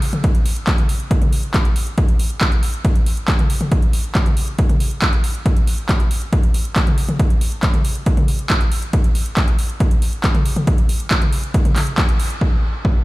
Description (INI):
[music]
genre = trance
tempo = 138 BPM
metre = 4/4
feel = straight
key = none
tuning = none
[part]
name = big-room dance drum kit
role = drums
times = 0.0-12.4 s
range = handclaps, hi-hat, toms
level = -23 LUFS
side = equal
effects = none
[part]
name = electronic kick drum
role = drums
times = 0.2-12.9 s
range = none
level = -16 LUFS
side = equal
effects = none
[sound]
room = digital ambience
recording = played on a big sound system in a bare room, stone room reverb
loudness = -15 LUFS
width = side -20 dB against mid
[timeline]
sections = 0.0-12.4 A section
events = band accent 12.0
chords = none